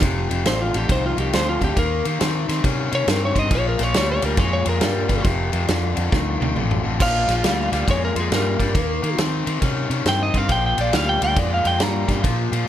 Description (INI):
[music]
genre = electric blues shuffle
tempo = 138 BPM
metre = 4/4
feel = swing 65% on 8ths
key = Bb mixolydian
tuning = A4 = 440 Hz
[part]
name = overdriven semi-hollow guitar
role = riff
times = 0.0-12.7 s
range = F2 to Db4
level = -24 LUFS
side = left 3 dB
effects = none
[part]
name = fingered electric bass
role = bass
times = 0.0-12.7 s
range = F1 to Eb3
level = -24 LUFS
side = right 1 dB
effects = none
[part]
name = natural country drum kit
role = drums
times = 0.0-12.6 s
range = crash cymbal, kick drum, ride cymbal, snare drum, toms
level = -23 LUFS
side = right 1 dB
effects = none
[part]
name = lightly driven lead guitar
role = melody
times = 0.5-12.1 s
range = F4 to Bb5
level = -24 LUFS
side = equal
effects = plate reverb
[sound]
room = moderate studio reverb, RT60 0.5 s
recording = none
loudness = -18 LUFS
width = side -11 dB against mid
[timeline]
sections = 0.0-7.0 A section; 7.0-12.7 A section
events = lead electric guitar solo 0.0-12.7; drum fill 6.1-7.0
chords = 0.0 F7; 1.8 Eb7; 3.5 Bb7; 5.3 F7; 7.0 Bb7; 8.7 Eb7; 10.5 Bb7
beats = | 0.02 0.46 0.90 1.33 | 1.77 2.20 2.64 3.08 | 3.51 3.95 4.38 4.82 | 5.25 5.69 6.13 6.56 | 7.00 7.44 7.87 8.31 | 8.75 9.18 9.62 10.06 | 10.49 10.93 11.37 11.81 | 12.24